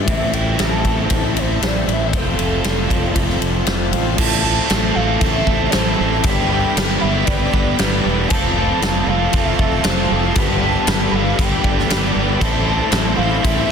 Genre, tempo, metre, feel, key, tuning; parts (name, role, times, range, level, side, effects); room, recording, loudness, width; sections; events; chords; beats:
rock, shoegaze and dream pop; 117 BPM; 4/4; straight; A minor; A4 = 440 Hz
warm velvety synth lead; melody; 0.0-13.7 s; A4 to A5; -26 LUFS; equal; chorus, digital delay
shimmering ambient pad; sustained chords; 0.0-13.7 s; E4 to C6; -28 LUFS; right 1 dB; chorus, built-in reverb
biting overdriven guitar; riff; 0.0-13.7 s; F2 to C5; -22 LUFS; right 12 dB; reverse reverb
overdriven electric guitar; riff; 0.0-13.7 s; F2 to A4; -23 LUFS; left 14 dB; lush chorus
modern bright fingered electric bass; bass; 0.0-13.6 s; E1 to A1; -22 LUFS; equal
big rock drum kit; drums; 0.1-13.6 s; crash cymbal, kick drum, ride cymbal, snare drum; -19 LUFS; equal
studio ambience; dense, heavily limited modern master; -15 LUFS; side -7 dB against mid
0.0-4.2 A section; 4.2-13.7 B section
0.1 Am; 2.1 F6; 4.2 Amadd9; 6.2 Gadd9; 8.3 Fmaj7; 10.4 Gadd9; 12.4 Amadd9
| 0.07 0.58 1.10 1.61 | 2.13 2.65 3.16 3.68 | 4.19 4.71 5.22 5.74 | 6.25 6.76 7.28 7.79 | 8.31 8.82 9.34 9.85 | 10.37 10.88 11.39 11.91 | 12.42 12.94 13.45